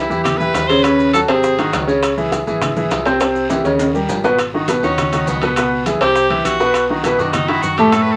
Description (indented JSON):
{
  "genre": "Afro-Cuban jazz",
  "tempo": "204 BPM",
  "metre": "4/4",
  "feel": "straight",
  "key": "G# minor from 4.4 s",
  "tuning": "A4 = 440 Hz",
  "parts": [
    { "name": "bright tenor saxophone", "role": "melody", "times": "0.0-1.8, 4.8-8.2 s", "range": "B3 to C5", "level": "-22 LUFS", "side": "equal", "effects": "none" },
    { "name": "clear concert grand piano", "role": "accompaniment", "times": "0.0-8.2 s", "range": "A2 to C#5", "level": "-18 LUFS", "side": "equal", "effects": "none" },
    { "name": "hollow-body short-scale fingered electric bass", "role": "bass", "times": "0.0-8.2 s", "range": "G#1 to F#2", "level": "-31 LUFS", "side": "equal", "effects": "none" },
    { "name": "congas", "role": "percussion", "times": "0.1-8.2 s", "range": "none", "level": "-30 LUFS", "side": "equal", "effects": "none" },
    { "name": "guiro", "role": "percussion", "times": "0.1-8.2 s", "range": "none", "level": "-37 LUFS", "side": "equal", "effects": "none" },
    { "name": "maracas", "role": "percussion", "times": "0.1-8.1 s", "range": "none", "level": "-39 LUFS", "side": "equal", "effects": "none" },
    { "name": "bongos", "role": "percussion", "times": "0.3-8.2 s", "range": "none", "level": "-29 LUFS", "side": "equal", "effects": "none" },
    { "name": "timbales", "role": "percussion", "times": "0.3-8.1 s", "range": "none", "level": "-27 LUFS", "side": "equal", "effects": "none" }
  ],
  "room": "wet small room ambience, RT60 0.5 s",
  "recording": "none",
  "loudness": "-16 LUFS",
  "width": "mono",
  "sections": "0.0-4.4 A section; 4.4-8.2 B section",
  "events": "drum fill 3.5-4.4; tenor saxophone solo 4.4-8.2",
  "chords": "0.0 Cmaj7; 0.8 D#m7b5; 1.4 G#7; 2.0 C#m; 3.2 C; 3.8 D#7; 4.4 G#m7; 5.6 C#m7; 6.2 C; 6.7 B",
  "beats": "0.26 0.55 | 0.85 1.14 1.44 1.73 | 2.03 2.32 2.62 2.91 | 3.21 3.50 3.80 4.09 | 4.39 4.68 4.98 5.27 | 5.57 5.86 6.16 6.45 | 6.75 7.04 7.33 7.63 | 7.92"
}